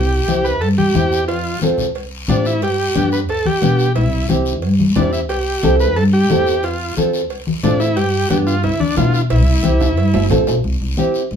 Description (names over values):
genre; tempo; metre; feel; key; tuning
latin, cumbia; 180 BPM; 4/4; straight; C major; A4 = 437 Hz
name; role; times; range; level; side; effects
combo organ; melody; 0.0-10.3 s; D4 to B4; -19 LUFS; right 1 dB; none
upright bass; bass; 0.0-11.4 s; G1 to B2; -18 LUFS; equal; none
nylon-string guitar; accompaniment; 0.3-11.2 s; B3 to A4; -19 LUFS; equal; none
congas; percussion; 0.3-11.1 s; none; -21 LUFS; left 4 dB; none
cowbell and timbales; percussion; 0.3-10.6 s; none; -27 LUFS; right 5 dB; none
guiro; percussion; 0.3-11.4 s; none; -30 LUFS; left 4 dB; none
room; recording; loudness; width
moderate studio reverb, RT60 0.5 s; band playing live in one room; -14 LUFS; side -8 dB against mid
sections
0.0-10.6 A section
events
drum fill 9.8-10.6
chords
0.0 C; 1.3 F; 2.6 G; 4.0 C; 6.6 F; 8.0 G; 9.3 C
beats
0.28 0.61 0.95 | 1.28 1.62 1.95 2.29 | 2.62 2.96 3.29 3.62 | 3.96 4.29 4.63 4.96 | 5.29 5.63 5.96 6.30 | 6.63 6.96 7.30 7.63 | 7.97 8.30 8.63 8.97 | 9.30 9.64 9.97 10.30 | 10.64 10.97 11.31